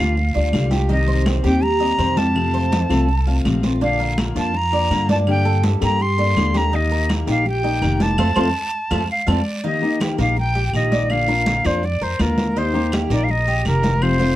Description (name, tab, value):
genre	latin, Cuban son and guajira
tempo	165 BPM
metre	4/4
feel	straight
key	unclear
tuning	A4 = 441 Hz
part	bright reedy jazz flute	melody	0.0-14.4 s	Bb4 to C6	-22 LUFS	right 1 dB	none
part	picked steel-string acoustic guitar	accompaniment	0.0-14.4 s	C3 to A4	-22 LUFS	left 3 dB	none
part	Cuban tres	arpeggios	0.0-14.4 s	D4 to F5	-26 LUFS	right 2 dB	none
part	upright bass	bass	0.0-14.4 s	F1 to G2	-20 LUFS	equal	none
part	congas	percussion	0.2-14.4 s	none	-25 LUFS	equal	none
part	guiro	percussion	0.2-14.4 s	none	-36 LUFS	right 4 dB	none
part	claves	percussion	0.5-14.2 s	none	-33 LUFS	equal	none
room	light reverb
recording	close, detailed microphones, vinyl crackle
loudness	-16 LUFS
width	side -14 dB against mid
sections	0.0-9.6 A section; 9.6-14.4 B section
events	band accent 8.2-9.6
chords	0.0 G7(no3); 0.9 Cm; 2.4 F; 3.8 Bb; 5.3 Gmadd9; 6.7 Eb; 8.2 F; 9.6 Eb; 11.1 Bb; 12.6 Eb